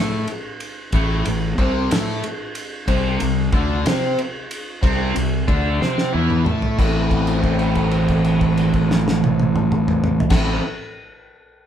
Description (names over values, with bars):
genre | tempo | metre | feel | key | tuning
psychedelic rock | 61 BPM (dotted quarters) | 6/8 | straight | A minor | A4 = 437 Hz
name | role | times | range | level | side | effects
biting overdriven guitar | riff | 0.0-10.6 s | A2 to C5 | -21 LUFS | right 1 dB | phaser
fuzz fingered electric bass | bass | 0.0-10.6 s | A1 to C3 | -22 LUFS | equal | overdrive
cloth-damped thuddy drum kit | drums | 0.3-10.5 s | crash cymbal, kick drum, ride cymbal, snare drum, toms | -22 LUFS | equal | none
room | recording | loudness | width
moderate large studio reverb, RT60 1.1 s | band playing live in one room | -17 LUFS | side -9 dB against mid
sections
0.0-6.8 A section; 6.8-10.7 B section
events
drum fill 5.8-6.8; held note 6.8-10.3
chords
0.0 Am; 2.9 C69; 6.8 Am